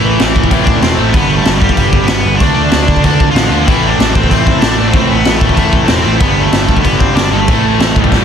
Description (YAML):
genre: punk rock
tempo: 189 BPM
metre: 4/4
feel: straight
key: A minor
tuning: A4 = 441 Hz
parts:
  - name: cranked stack guitar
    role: melody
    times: 0.0-8.2 s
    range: E3 to D5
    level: -16 LUFS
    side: equal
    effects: overdrive
  - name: crunchy overdriven guitar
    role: riff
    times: 0.0-8.2 s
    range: G2 to D4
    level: -17 LUFS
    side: right 12 dB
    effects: none
  - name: overdriven electric guitar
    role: riff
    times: 0.0-8.2 s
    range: G2 to D4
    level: -18 LUFS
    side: left 15 dB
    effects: none
  - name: tight distorted guitar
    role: riff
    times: 0.0-8.2 s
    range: G2 to D4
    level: -19 LUFS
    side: equal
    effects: distortion
  - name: overdriven picked electric bass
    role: bass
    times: 0.0-8.2 s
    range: E1 to D2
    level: -17 LUFS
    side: equal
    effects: none
  - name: raw garage drum kit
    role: drums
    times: 0.2-8.2 s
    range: crash cymbal, kick drum, snare drum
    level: -12 LUFS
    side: equal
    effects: none
room: little or no reverb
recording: dense, heavily limited modern master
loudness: -8 LUFS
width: side -8 dB against mid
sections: 0.0-8.2 A section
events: none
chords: 0.0 Am; 1.1 G; 2.4 Dm; 3.7 Am; 6.2 G; 7.5 A5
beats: 0.20 0.52 0.83 | 1.15 1.46 1.78 2.09 | 2.41 2.73 3.04 3.36 | 3.67 3.99 4.31 4.62 | 4.94 5.26 5.58 5.89 | 6.21 6.53 6.85 7.17 | 7.48 7.80 8.12